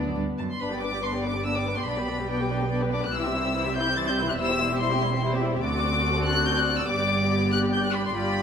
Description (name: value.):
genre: quick classical-period movement for string orchestra.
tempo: 143 BPM.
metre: 3/4.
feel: rubato.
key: G major.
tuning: A4 = 439 Hz.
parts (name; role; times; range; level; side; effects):
rich studio violin section; melody; 0.0-8.4 s; D5 to A6; -28 LUFS; left 3 dB; none.
rich symphonic violin section; second line; 0.0-8.4 s; D4 to E5; -31 LUFS; left 2 dB; none.
dark studio viola section; accompaniment; 0.0-8.4 s; E3 to G4; -29 LUFS; left 2 dB; none.
warm studio cello section; bass; 0.0-8.4 s; D2 to C3; -32 LUFS; right 3 dB; none.
warm studio double bass section; bass; 0.0-8.4 s; E1 to D2; -31 LUFS; right 3 dB; none.
room: wet scoring stage reverb, RT60 1.6 s.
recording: none.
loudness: -23 LUFS.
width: side -7 dB against mid.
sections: 0.6-8.4 A section.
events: none.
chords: 0.2 D; 0.6 G; 1.9 G/B; 3.1 C; 4.4 C/E; 5.6 D7; 6.9 G.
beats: 0.16 | 0.60 1.03 1.46 | 1.88 2.30 2.72 | 3.13 3.56 3.98 | 4.39 4.81 5.23 | 5.64 6.05 6.47 | 6.89 7.31 7.73 | 8.15.